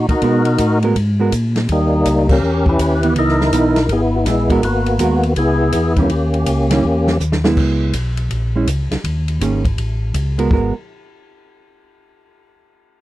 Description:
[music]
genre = soul jazz organ trio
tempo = 163 BPM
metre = 4/4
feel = swing 65% on 8ths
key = G# minor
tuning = A4 = 436 Hz
[part]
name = percussive tonewheel organ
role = melody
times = 0.0-7.2 s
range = G3 to B4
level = -16 LUFS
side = left 1 dB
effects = slow rotary speaker, overdrive, chorus vibrato, slapback echo
[part]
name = mellow tonewheel organ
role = bass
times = 0.0-10.7 s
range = G#1 to B2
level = -18 LUFS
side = equal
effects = chorus vibrato, slow rotary speaker
[part]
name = open jazz drum kit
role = drums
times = 0.1-10.6 s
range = crash cymbal, hi-hat, kick drum, ride cymbal, snare drum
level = -22 LUFS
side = equal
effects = none
[part]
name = hollow-body jazz guitar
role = accompaniment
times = 0.2-10.7 s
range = D#3 to A#4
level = -18 LUFS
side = right 4 dB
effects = none
[sound]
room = little or no reverb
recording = dry, close 1970s-style studio recording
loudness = -14 LUFS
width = side -15 dB against mid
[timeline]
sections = 0.0-7.6 A section; 7.6-10.5 B section; 10.5-12.0 C section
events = band accent 2.2; drum fill 7.2-7.6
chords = 0.0 G#m9; 1.7 D#7b9; 3.2 C#m9; 4.6 G#m9; 5.4 C#m9; 6.1 D#7b9; 7.6 C#m7; 8.3 A#m7b5; 9.0 D#7sus4; 9.8 A; 10.5 G#m9

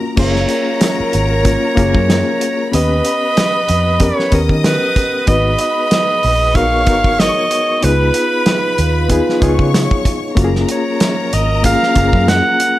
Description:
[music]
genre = lush 1970s-style soul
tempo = 94 BPM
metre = 4/4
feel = swing 54% on 16ths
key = unclear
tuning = A4 = 440 Hz
[part]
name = clear studio string section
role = second line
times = 0.0-12.8 s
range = Bb4 to Eb6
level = -23 LUFS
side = left 4 dB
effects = none
[part]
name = reed electric piano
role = accompaniment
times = 0.0-12.8 s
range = Bb3 to Cb5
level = -19 LUFS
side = left 3 dB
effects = overdrive, fast tremolo
[part]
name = mellow French horn section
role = sustained chords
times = 0.0-12.8 s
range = Db3 to Bb4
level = -27 LUFS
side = right 2 dB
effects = none
[part]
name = bright alto saxophone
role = melody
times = 0.2-12.8 s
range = Cb5 to Gb5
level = -16 LUFS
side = right 2 dB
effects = none
[part]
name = vintage muted fingered electric bass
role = bass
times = 0.2-12.4 s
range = Gb1 to Eb3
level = -17 LUFS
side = equal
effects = none
[part]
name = warm soul drum kit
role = drums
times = 0.2-12.8 s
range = crash cymbal, hi-hat, kick drum, snare drum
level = -17 LUFS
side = right 1 dB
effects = none
[sound]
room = small room ambience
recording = none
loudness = -12 LUFS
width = side -15 dB against mid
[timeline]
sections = 0.2-12.8 A section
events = none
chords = 0.2 Gbmaj7; 2.7 Eb7b13; 5.3 Abm9; 7.8 Db9; 10.4 Gbmaj9

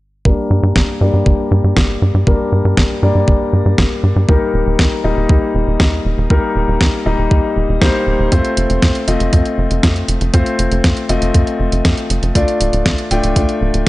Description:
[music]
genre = italo disco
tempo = 119 BPM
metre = 4/4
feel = straight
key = G minor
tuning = A4 = 442 Hz
[part]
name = bright grand piano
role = stabs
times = 0.3-13.9 s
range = G3 to G5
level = -17 LUFS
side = left 2 dB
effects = low-pass filter, shimmer reverb, tape echo
[part]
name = tight sequencer bass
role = bass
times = 0.3-13.9 s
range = D1 to G2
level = -15 LUFS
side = equal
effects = none
[part]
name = electronic kick drum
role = drums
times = 0.3-13.9 s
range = none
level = -15 LUFS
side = equal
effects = none
[part]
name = clean 12-bit digital drum machine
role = drums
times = 0.8-13.9 s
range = hi-hat, snare drum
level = -19 LUFS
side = equal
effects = none
[sound]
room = little or no reverb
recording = dry, gritty hardware recording, nothing above 10.5 kHz, faint mains hum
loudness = -12 LUFS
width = side -18 dB against mid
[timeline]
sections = 0.3-13.9 A section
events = filter sweep on grand piano 0.3-13.9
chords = 0.3 Gm; 4.3 Eb; 8.3 F; 12.4 Dm

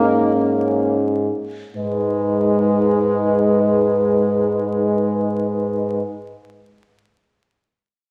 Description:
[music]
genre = classical, lyrical piece for horn quartet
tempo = 44 BPM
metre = 4/4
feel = rubato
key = G# minor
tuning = A4 = 440 Hz
[part]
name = mellow French horn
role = melody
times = 0.0-6.0 s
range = C#4 to B4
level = -24 LUFS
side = equal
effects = none
[part]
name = mellow French horn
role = second line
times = 0.0-6.0 s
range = C#4 to D#4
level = -30 LUFS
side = equal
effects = none
[part]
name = clear French horn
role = accompaniment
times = 0.0-6.0 s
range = G#3 to A#3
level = -23 LUFS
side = equal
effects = none
[part]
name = mellow French horn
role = bass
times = 0.0-6.0 s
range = G#2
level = -25 LUFS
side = equal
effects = none
[sound]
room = wet scoring stage reverb, RT60 1.4 s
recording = vinyl crackle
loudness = -19 LUFS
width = mono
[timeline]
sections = 0.0-1.8 A section; 1.8-7.2 B section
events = slowing down 0.0-1.8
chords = 0.0 C#5/G#; 1.8 G#m

